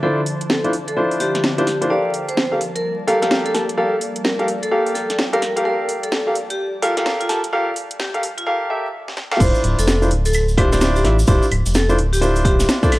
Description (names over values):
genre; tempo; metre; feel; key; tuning
UK garage, two-step garage; 128 BPM; 4/4; swing 63% on 16ths; D minor; A4 = 436 Hz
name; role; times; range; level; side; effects
vibraphone with medium hard mallets; melody; 0.0-13.0 s; F4 to D5; -23 LUFS; equal; low-pass filter
ethereal airy pad; sustained chords; 0.0-8.4 s; D3 to A5; -30 LUFS; equal; ensemble chorus, built-in reverb, sidechain pumping
dark baby grand piano; stabs; 0.0-12.9 s; D4 to A5; -20 LUFS; equal; none
house drum kit; drums; 0.3-13.0 s; claves, crash cymbal, hi-hat, snare drum; -23 LUFS; equal; none
rubbery square bass; bass; 9.4-12.7 s; D1 to A1; -18 LUFS; equal; tube saturation
electronic kick drum; drums; 9.4-12.9 s; none; -16 LUFS; equal; none
cabasa; percussion; 9.4-12.9 s; none; -30 LUFS; right 2 dB; none
room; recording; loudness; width
moderate lush hall reverb, RT60 2.1 s; dry, gritty hardware recording, vinyl crackle, high-pass filter; -16 LUFS; side -18 dB against mid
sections
0.0-9.4 A section; 9.4-13.0 B section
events
build-up 0.0-9.4; filter sweep on vibraphone 0.0-9.4; filter sweep 0.0-9.4; drum fill 9.1-9.4; drop 9.4-13.0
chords
0.0 Dm9; 1.9 Gm9; 9.4 Dm9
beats
| 0.03 0.50 0.97 1.44 | 1.90 2.37 2.84 3.31 | 3.78 4.25 4.72 5.18 | 5.65 6.12 6.59 7.06 | 7.53 8.00 8.47 8.94 | 9.40 9.87 10.34 10.81 | 11.28 11.75 12.22 12.69